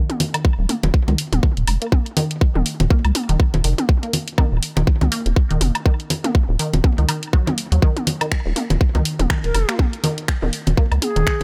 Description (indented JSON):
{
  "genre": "minimal techno",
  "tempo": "122 BPM",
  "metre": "4/4",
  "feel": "swing 58% on 16ths",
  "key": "unclear",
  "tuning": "A4 = 440 Hz",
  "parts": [
    { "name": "garage drum kit", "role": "drums", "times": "0.1-11.4 s", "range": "finger snaps, hi-hat", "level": "-27 LUFS", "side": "equal", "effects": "none" },
    { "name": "electronic toms, congas and woodblock", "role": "percussion", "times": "0.1-11.4 s", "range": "none", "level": "-26 LUFS", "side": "equal", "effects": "delay" },
    { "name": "resonant blip pluck", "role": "riff", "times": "0.3-11.2 s", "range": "Eb3 to Bb3", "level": "-30 LUFS", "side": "equal", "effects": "phaser, cassette tape, sidechain pumping, delay" },
    { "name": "electronic kick drum", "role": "drums", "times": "0.4-11.4 s", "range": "none", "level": "-18 LUFS", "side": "equal", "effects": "none" },
    { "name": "rubbery square bass", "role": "bass", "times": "0.6-11.4 s", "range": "Eb1 to Eb2", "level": "-21 LUFS", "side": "equal", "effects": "sidechain pumping" },
    { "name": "mellow hollow silver concert flute", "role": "melody", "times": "9.4-11.4 s", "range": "Ab4 to Bb4", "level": "-27 LUFS", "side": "equal", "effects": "delay" }
  ],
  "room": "little or no reverb",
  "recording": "none",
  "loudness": "-19 LUFS",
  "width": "mono",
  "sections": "0.0-11.4 A section",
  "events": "none",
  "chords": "none",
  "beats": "0.45 0.94 1.43 | 1.92 2.41 2.90 3.40 | 3.89 4.38 4.87 5.36 | 5.86 6.35 6.84 7.33 | 7.82 8.31 8.81 9.30 | 9.79 10.28 10.77 11.27"
}